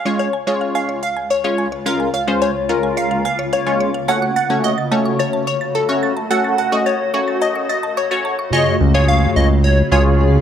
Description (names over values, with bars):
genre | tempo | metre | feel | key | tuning
pop | 108 BPM | 4/4 | straight | Db major | A4 = 440 Hz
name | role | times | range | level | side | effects
glassy wavetable pluck | melody | 0.0-8.5 s | A4 to Gb5 | -20 LUFS | left 1 dB | chorus, tape echo
granular cloud pad | sustained chords | 0.9-10.4 s | Db2 to Ab4 | -24 LUFS | left 1 dB | built-in reverb
funky polysynth comp | accompaniment | 0.1-10.4 s | Ab3 to Eb5 | -19 LUFS | left 1 dB | chorus
mallet-like synth pluck | arpeggios | 0.1-8.5 s | Db5 to A6 | -27 LUFS | right 4 dB | chorus, tape echo
plucky unison lead | melody | 8.5-10.0 s | Db5 to F5 | -19 LUFS | equal | tape echo
fat analog bass | bass | 8.8-10.4 s | Db2 | -13 LUFS | equal | none
room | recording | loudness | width
light reverb, digital ambience | high-pass filter | -15 LUFS | side -9 dB against mid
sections
0.0-8.5 A section; 8.5-10.4 B section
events
build-up 0.0-8.5; drop 8.5-10.4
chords
0.0 Db; 4.1 Gbm; 8.5 Db